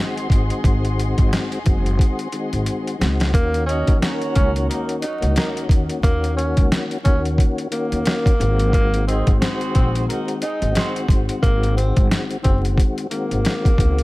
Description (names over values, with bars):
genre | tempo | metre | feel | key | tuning
hip hop, boom-bap hip-hop | 89 BPM | 4/4 | swing 58% on 16ths | Eb dorian | A4 = 441 Hz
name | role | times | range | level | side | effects
tonewheel organ | accompaniment | 0.0-14.0 s | Eb3 to Gb4 | -25 LUFS | left 2 dB | chorus vibrato, stopped rotary speaker, high-pass filter, low-pass filter
rich studio string section | sustained chords | 0.0-3.3 s | Ab4 to C6 | -32 LUFS | left 1 dB | high-pass filter, low-pass filter
boom bap sampler-style drum kit | drums | 0.2-14.0 s | hi-hat, kick drum, snare drum | -18 LUFS | equal | none
upright bass | bass | 0.3-14.0 s | Gb1 to Eb2 | -21 LUFS | equal | none
mellow tenor saxophone | melody | 3.3-14.0 s | Bb3 to Eb4 | -26 LUFS | equal | high-pass filter, low-pass filter, tape echo
mellow horn section | stabs | 3.7-11.0 s | Gb3 to Eb5 | -28 LUFS | right 3 dB | high-pass filter, low-pass filter, tape echo
room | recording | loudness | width
small room ambience | vinyl crackle | -17 LUFS | side -20 dB against mid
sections
0.0-3.3 A section; 3.3-14.0 B section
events
drum fill 2.7-3.3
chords
0.0 Ab7; 3.3 Ebm7; 8.4 Ab7